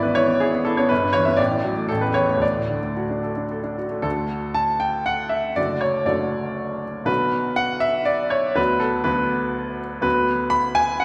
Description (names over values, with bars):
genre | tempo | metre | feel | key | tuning
classical, romantic character piece for solo piano | 109-126 BPM | 3/4 | rubato | D major | A4 = 440 Hz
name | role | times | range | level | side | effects
clear baby grand piano | solo | 0.0-11.0 s | F#1 to B5 | -22 LUFS | equal | none
room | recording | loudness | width
wet recital hall reverb, RT60 1.6 s | none | -22 LUFS | mono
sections
0.0-4.0 A section; 4.0-11.0 B section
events
none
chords
0.0 E/G#; 0.9 Em/G; 1.4 D/A; 1.9 A; 2.4 D; 5.6 D/F#; 7.1 Bm; 8.6 Bm/D